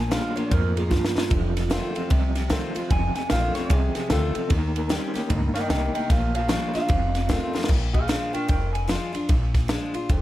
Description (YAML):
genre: rockabilly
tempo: 150 BPM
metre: 4/4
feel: swing 63% on 8ths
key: Bb mixolydian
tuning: A4 = 440 Hz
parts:
  - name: electric guitar through a small old amp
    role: melody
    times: 0.0-8.9 s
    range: F4 to Ab5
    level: -29 LUFS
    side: equal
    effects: tape echo
  - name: picked steel-string acoustic guitar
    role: accompaniment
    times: 0.0-10.2 s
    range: F2 to G4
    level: -30 LUFS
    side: left 2 dB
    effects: none
  - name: electric guitar through a small old amp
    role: riff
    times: 0.0-7.7 s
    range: F2 to C4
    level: -30 LUFS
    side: right 2 dB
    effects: tremolo
  - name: upright bass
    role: bass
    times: 0.0-10.2 s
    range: F1 to F2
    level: -26 LUFS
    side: equal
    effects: none
  - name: compact cocktail drum kit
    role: drums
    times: 0.1-10.2 s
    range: crash cymbal, kick drum, ride cymbal, snare drum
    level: -25 LUFS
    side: equal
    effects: none
room: light reverb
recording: none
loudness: -21 LUFS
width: side -15 dB against mid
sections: 0.0-7.7 A section; 7.7-10.2 B section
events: clean electric guitar solo 0.0-7.7; drum fill 0.9-1.3, 7.5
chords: 0.0 Bb7; 1.3 F7; 4.5 Eb7; 6.1 Bb7; 6.9 F7; 7.7 Bb7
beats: 0.12 0.52 0.92 | 1.31 1.71 2.11 2.51 | 2.91 3.31 3.71 4.11 | 4.51 4.91 5.30 5.70 | 6.10 6.50 6.90 7.30 | 7.70 8.10 8.50 8.90 | 9.30 9.70 10.10